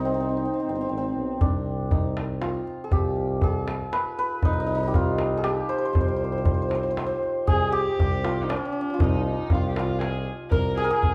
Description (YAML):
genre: Persian modal ensemble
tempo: 119 BPM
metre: 3/4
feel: straight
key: C avaz esfahan, C dastgah shur from 7.5 s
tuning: A4 = 440 Hz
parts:
  - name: santur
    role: melody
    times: 0.0-11.1 s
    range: C4 to C5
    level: -28 LUFS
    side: equal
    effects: none
  - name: warm tuba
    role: bass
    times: 0.0-11.1 s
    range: G1 to C2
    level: -32 LUFS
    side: equal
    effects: none
  - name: tombak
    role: percussion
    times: 1.4-11.1 s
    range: none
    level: -27 LUFS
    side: equal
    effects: none
  - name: rich kamancheh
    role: second line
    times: 7.5-11.1 s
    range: Db4+49c to Bb4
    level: -33 LUFS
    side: equal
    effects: none
room: moderate large studio reverb, RT60 1.2 s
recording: band playing live in one room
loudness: -25 LUFS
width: mono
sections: 0.0-7.5 A section; 7.5-11.1 B section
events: none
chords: none